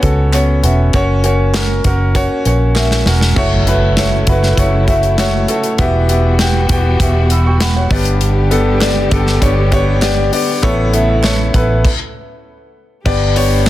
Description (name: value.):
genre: piano-driven pop.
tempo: 99 BPM.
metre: 4/4.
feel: straight.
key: unclear.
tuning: A4 = 443 Hz.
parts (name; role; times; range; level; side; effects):
clear concert grand piano; accompaniment; 0.0-13.7 s; G2 to E6; -15 LUFS; left 1 dB; none.
vintage muted fingered electric bass; bass; 0.0-13.7 s; E1 to C#2; -14 LUFS; equal; none.
modern studio drum kit; drums; 0.0-13.7 s; crash cymbal, hi-hat, kick drum, snare drum; -17 LUFS; equal; soft clipping on snare.
group handclap; percussion; 0.3-2.9, 8.8-13.7 s; none; -28 LUFS; right 6 dB; none.
warm studio string section; sustained chords; 3.3-13.7 s; C#3 to G4; -24 LUFS; right 1 dB; none.
impact; sound effects; 3.4-5.8 s; none; -24 LUFS; right 1 dB; none.
room: small room ambience.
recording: dense, heavily limited modern master.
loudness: -11 LUFS.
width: side -14 dB against mid.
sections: 0.0-3.4 A section; 3.4-13.1 B section.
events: drum fill 2.8-3.4; impact 3.4-5.8; stop 11.8-13.1.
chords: 0.0 Bsus2; 0.9 F#; 3.4 F#m7; 5.8 Emadd9; 7.9 G; 10.6 Aadd9; 13.1 G.